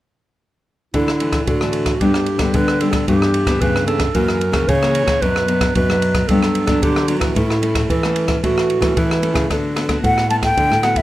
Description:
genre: samba and choro.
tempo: 112 BPM.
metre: 4/4.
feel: straight.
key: D major.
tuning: A4 = 439 Hz.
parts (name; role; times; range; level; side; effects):
mellow clarinet; second line; 0.9-9.5 s; E4 to C#5; -21 LUFS; right 2 dB; plate reverb.
nylon-string guitar; accompaniment; 0.9-11.0 s; F#2 to F#4; -22 LUFS; left 1 dB; none.
nylon-string guitar; bass; 0.9-11.0 s; F#2 to E3; -20 LUFS; equal; none.
open jazz drum kit; drums; 0.9-11.0 s; kick drum, ride cymbal, rim click; -21 LUFS; equal; none.
wooden flute; melody; 10.0-11.0 s; E5 to A5; -16 LUFS; left 1 dB; plate reverb.
room: moderate studio reverb, RT60 0.5 s.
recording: rough home demo mix.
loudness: -15 LUFS.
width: side -15 dB against mid.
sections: 0.9-9.5 A section; 9.5-11.0 B section.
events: none.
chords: 0.9 Dsus2; 2.0 G; 3.1 Em7/G; 4.2 F#7; 5.2 Bm/F#; 6.3 Gmaj7; 7.4 A; 9.5 D6.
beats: | 0.94 1.48 2.02 2.55 | 3.09 3.62 4.16 4.69 | 5.23 5.76 6.29 6.83 | 7.36 7.90 8.43 8.97 | 9.50 10.04 10.57.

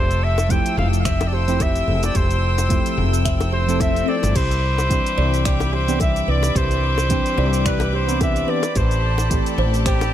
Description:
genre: sunset chillout.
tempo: 109 BPM.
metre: 4/4.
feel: swing 56% on 16ths.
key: unclear.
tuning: A4 = 440 Hz.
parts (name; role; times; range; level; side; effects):
clear flugelhorn; melody; 0.0-10.1 s; G4 to G5; -24 LUFS; equal; ping-pong delay.
bright chamber string section; sustained chords; 0.0-10.1 s; A4 to E6; -29 LUFS; left 3 dB; none.
kalimba; arpeggios; 0.0-10.0 s; G4 to G5; -31 LUFS; right 5 dB; digital delay.
woody fretless electric bass; bass; 0.0-10.1 s; F1 to C2; -20 LUFS; equal; none.
smooth R&B drum kit; drums; 0.1-10.1 s; crash cymbal, finger snaps, hi-hat, shaker; -30 LUFS; equal; none.
bongos; percussion; 0.4-10.1 s; none; -29 LUFS; left 6 dB; none.
soft electric-piano-like synth keys; accompaniment; 0.5-10.1 s; E3 to A4; -25 LUFS; moving between left 4 dB and right 4 dB; chorus, auto-pan, digital delay.
electronic kick drum; drums; 0.5-10.0 s; none; -22 LUFS; equal; none.
swell; sound effects; 3.5-4.4 s; none; -28 LUFS; left 6 dB; none.
wind-like tuned noise texture; texture; 6.2-10.1 s; D5 to D6; -36 LUFS; right 2 dB; none.
room: light reverb.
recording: none.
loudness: -17 LUFS.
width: side -11 dB against mid.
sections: 0.0-10.1 A section.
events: swell 3.5-4.4.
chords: 0.0 Fmaj9; 4.4 Cmaj9; 8.8 Am9.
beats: 0.50 1.05 1.60 | 2.15 2.70 3.25 3.80 | 4.35 4.90 5.45 6.00 | 6.55 7.10 7.65 8.20 | 8.76 9.30 9.86.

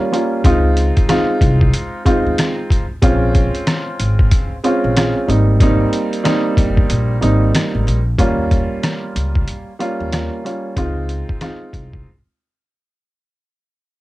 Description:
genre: hip hop, boom-bap hip-hop.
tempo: 93 BPM.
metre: 4/4.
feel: swing 63% on 16ths.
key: unclear.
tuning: A4 = 440 Hz.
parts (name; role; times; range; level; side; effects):
warm upright piano; accompaniment; 0.0-12.1 s; G3 to F4; -18 LUFS; right 1 dB; high-pass filter, low-pass filter, cassette tape.
trip hop sampler-style drum kit; drums; 0.1-12.0 s; hi-hat, kick drum, rim click, snare drum; -17 LUFS; equal; cassette tape.
upright bass; bass; 0.4-12.0 s; G1 to Eb2; -17 LUFS; equal; transformer saturation.
room: little or no reverb.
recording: home recording on cassette.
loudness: -14 LUFS.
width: side -18 dB against mid.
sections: 0.0-8.2 A section; 8.2-13.3 B section.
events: kick muted 6.9-8.2; fade-out 8.2-13.3; break 12.1-13.3.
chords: 0.4 Dbmaj7; 3.0 Bbm7; 5.3 Abmaj9; 8.2 Eb9; 10.8 Dbmaj7.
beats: | 0.44 1.09 1.73 2.38 | 3.02 3.67 4.31 4.96 | 5.61 6.25 6.89 7.54 | 8.19 8.83 9.48 10.12 | 10.77 11.41 12.06.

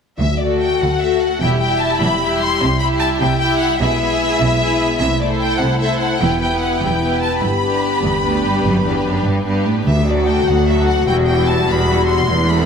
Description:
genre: cinematic, heroic adventure film score.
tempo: 99 BPM (dotted quarters).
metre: 12/8.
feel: straight.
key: D mixolydian.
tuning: A4 = 440 Hz.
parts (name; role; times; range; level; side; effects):
warm symphonic violin section; melody; 0.2-12.7 s; D5 to C6; -20 LUFS; left 3 dB; none.
dark French horn section; sustained chords; 0.2-12.7 s; G3 to G4; -21 LUFS; left 5 dB; none.
rich chamber double bass section; bass; 0.2-12.7 s; E1 to D2; -22 LUFS; right 2 dB; none.
rich symphonic cello section; bass; 0.2-12.7 s; D2 to C3; -22 LUFS; right 2 dB; none.
timpani; percussion; 0.2-0.8, 9.9-10.4 s; D3; -24 LUFS; right 1 dB; none.
rich symphonic violin section; second line; 0.4-12.7 s; E4 to E5; -23 LUFS; left 2 dB; none.
warm studio viola section; accompaniment; 0.4-12.7 s; F#3 to F#4; -23 LUFS; right 1 dB; none.
room: moderate scoring stage reverb, RT60 2.0 s.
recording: none.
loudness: -14 LUFS.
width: side -6 dB against mid.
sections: 0.2-12.7 A section.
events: none.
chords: 0.2 D; 1.4 Em; 2.6 C; 3.8 E/B; 5.0 Am/C; 6.2 Em; 7.4 G; 9.9 D; 11.1 Emadd9.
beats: | 0.20 0.81 1.42 2.02 | 2.62 3.21 3.81 4.41 | 5.00 5.60 6.21 6.81 | 7.42 8.03 8.65 9.26 | 9.87 10.47 11.08 11.69 | 12.29.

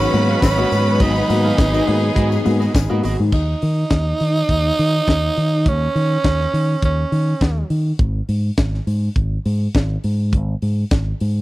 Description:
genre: disco.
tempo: 103 BPM.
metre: 4/4.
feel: straight.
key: unclear.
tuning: A4 = 440 Hz.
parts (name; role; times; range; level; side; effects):
raspy tenor saxophone; melody; 0.0-7.7 s; Db4 to Eb4; -21 LUFS; right 3 dB; none.
rich studio violin section; second line; 0.0-3.0 s; Cb5 to Cb6; -25 LUFS; left 2 dB; none.
electric guitar at the edge of break-up; accompaniment; 0.0-3.2 s; Gb4 to F5; -28 LUFS; right 4 dB; none.
warm baby grand piano; accompaniment; 0.0-3.3 s; Ab2 to Gb4; -23 LUFS; left 6 dB; none.
clear studio string section; sustained chords; 0.0-3.3 s; Eb3 to Ab4; -23 LUFS; left 1 dB; none.
fingered electric bass; bass; 0.0-11.4 s; Ab1 to Eb3; -19 LUFS; equal; none.
tambourine; percussion; 0.0-3.2 s; none; -38 LUFS; left 12 dB; none.
tight funk drum kit; drums; 0.1-11.3 s; crash cymbal, hi-hat, kick drum, snare drum; -18 LUFS; equal; none.
room: little or no reverb.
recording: dry, close 1970s-style studio recording.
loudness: -15 LUFS.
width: side -18 dB against mid.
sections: 0.0-3.3 A section; 3.3-11.4 B section.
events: none.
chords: 0.0 Abm7; 3.3 Dbsus2/Eb; 8.0 N.C..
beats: 0.42 | 1.00 1.58 2.16 2.75 | 3.33 3.91 4.49 5.07 | 5.66 6.24 6.83 7.41 | 7.99 8.58 9.16 9.75 | 10.33 10.91.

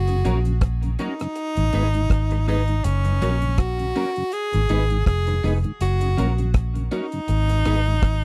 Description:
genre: roots reggae.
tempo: 81 BPM.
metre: 4/4.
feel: swing 56% on 16ths.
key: F# major.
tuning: A4 = 442 Hz.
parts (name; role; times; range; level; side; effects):
edgy tenor saxophone; melody; 0.0-8.2 s; C#4 to G#4; -29 LUFS; equal; tape echo.
vintage muted fingered electric bass; bass; 0.0-8.2 s; E#1 to A#1; -23 LUFS; equal; none.
mellow tonewheel organ; accompaniment; 0.1-7.9 s; F#2 to D#4; -31 LUFS; equal; chorus vibrato, slow rotary speaker.
deep reggae drum kit; drums; 0.1-8.2 s; hi-hat, kick drum, rim click; -24 LUFS; equal; none.
electric guitar at the edge of break-up; accompaniment; 0.2-7.8 s; C#4 to B4; -33 LUFS; equal; analog chorus, tape echo.
room: little or no reverb.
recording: dry, close 1970s-style studio recording.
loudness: -22 LUFS.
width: mono.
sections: 0.0-8.2 A section.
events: none.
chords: 0.0 F#; 1.4 G#m; 2.8 F#; 4.3 G#m; 5.8 F#; 7.3 G#m.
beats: 0.62 1.36 2.10 | 2.84 3.58 4.32 5.06 | 5.80 6.54 7.29 8.03.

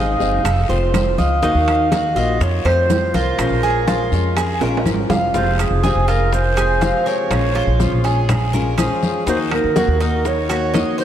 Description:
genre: latin, Cuban son and guajira.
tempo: 122 BPM.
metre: 4/4.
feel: straight.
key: Bb minor.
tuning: A4 = 440 Hz.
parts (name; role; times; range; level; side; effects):
mellow clarinet; melody; 0.0-11.0 s; Ab4 to F5; -22 LUFS; right 3 dB; analog delay.
fingerpicked swing-style acoustic guitar; accompaniment; 0.0-11.0 s; C3 to Ab4; -23 LUFS; left 4 dB; none.
Cuban tres; arpeggios; 0.0-11.0 s; Eb4 to F5; -22 LUFS; right 2 dB; none.
upright bass; bass; 0.0-10.8 s; F1 to F2; -20 LUFS; equal; none.
congas; percussion; 0.2-11.0 s; none; -25 LUFS; left 1 dB; none.
guiro; percussion; 0.2-11.0 s; none; -35 LUFS; left 11 dB; none.
maracas; percussion; 0.2-11.0 s; none; -39 LUFS; right 12 dB; none.
bongos; percussion; 0.5-11.0 s; none; -30 LUFS; left 6 dB; none.
claves; percussion; 0.5-10.7 s; none; -38 LUFS; right 10 dB; none.
timbales; percussion; 0.5-11.0 s; none; -29 LUFS; right 5 dB; none.
room: moderate lush hall reverb, RT60 3.0 s.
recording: dreamy mix soaked in reverb.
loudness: -15 LUFS.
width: side -10 dB against mid.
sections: 0.0-5.3 A section; 5.3-11.0 B section.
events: drum fill 4.6-5.3.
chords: 0.4 F; 1.4 Ebm; 2.4 F; 3.4 Bbm7; 5.3 Fm; 7.3 Bbm7; 9.3 Ebm.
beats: 0.45 0.94 | 1.43 1.92 2.41 2.90 | 3.39 3.88 4.37 4.86 | 5.35 5.84 6.33 6.82 | 7.31 7.80 8.29 8.78 | 9.27 9.76 10.25 10.74.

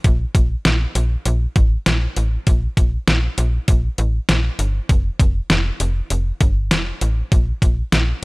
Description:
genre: synth-pop.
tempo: 99 BPM.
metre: 4/4.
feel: straight.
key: unclear.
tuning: A4 = 440 Hz.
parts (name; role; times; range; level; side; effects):
slap-like FM bass; bass; 0.0-8.1 s; F1 to Bb1; -19 LUFS; equal; none.
detuned 8-bit digital drum machine; drums; 0.0-8.1 s; hi-hat, kick drum, snare drum; -17 LUFS; equal; none.
room: little or no reverb.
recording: dry, gritty hardware recording.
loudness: -16 LUFS.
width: side -25 dB against mid.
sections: 0.0-8.2 A section.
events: none.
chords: none.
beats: | 0.04 0.65 1.26 1.86 | 2.47 3.08 3.68 4.29 | 4.89 5.50 6.11 6.71 | 7.32 7.92.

